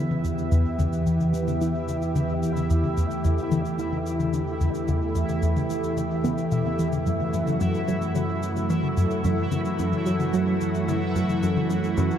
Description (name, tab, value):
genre	ambient, sequencer-driven space music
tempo	110 BPM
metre	4/4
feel	straight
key	E minor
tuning	A4 = 440 Hz
part	lush unison pad	sustained chords	0.0-12.2 s	E2 to G4	-26 LUFS	right 1 dB	chorus
part	tight sequenced synth	riff	0.0-12.1 s	E2 to B3	-26 LUFS	equal	chorus, tape echo
part	bubbling stepped-filter texture	texture	0.0-12.2 s	E4 to E5	-33 LUFS	equal	chorus, built-in reverb
part	electronic toms and cabasa	percussion	0.1-12.2 s	none	-33 LUFS	left 4 dB	tape echo
room	wet huge ambient reverb, RT60 8.5 s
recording	in a vast, echoing space, cassette tape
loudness	-22 LUFS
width	side -9 dB against mid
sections	0.0-12.2 A section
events	filter sweep on synth arpeggio sound 0.0-12.2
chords	0.0 Em; 7.1 F#m7